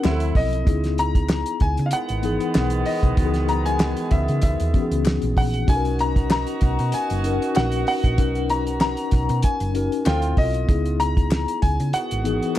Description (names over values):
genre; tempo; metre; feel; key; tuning
lush 1970s-style soul; 96 BPM; 4/4; swing 54% on 16ths; C# dorian; A4 = 444 Hz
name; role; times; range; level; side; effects
warm concert grand piano; melody; 0.0-12.6 s; D#5 to A#5; -26 LUFS; left 1 dB; none
mellow tine electric piano; accompaniment; 0.0-12.6 s; E3 to A#4; -26 LUFS; left 4 dB; medium stereo tremolo
mellow horn section; stabs; 0.0-12.6 s; D#3 to F#4; -31 LUFS; right 5 dB; tape echo
hollow-body short-scale fingered electric bass; bass; 0.0-12.4 s; F#1 to C#3; -24 LUFS; right 1 dB; none
group handclap; percussion; 0.0-12.6 s; none; -36 LUFS; left 6 dB; none
cloth-damped thuddy drum kit; drums; 0.1-12.6 s; hi-hat, kick drum, snare drum; -22 LUFS; equal; none
room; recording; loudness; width
little or no reverb; dark, warm production; -19 LUFS; side -13 dB against mid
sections
0.0-12.6 A section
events
none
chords
0.0 Dm9; 0.7 C#m9; 5.7 Bmaj7; 10.1 Dm9; 10.7 C#m9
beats
0.04 | 0.67 1.30 1.92 2.55 | 3.17 3.80 4.43 5.05 | 5.68 6.31 6.93 7.56 | 8.19 8.81 9.44 10.06 | 10.69 11.31 11.94 12.56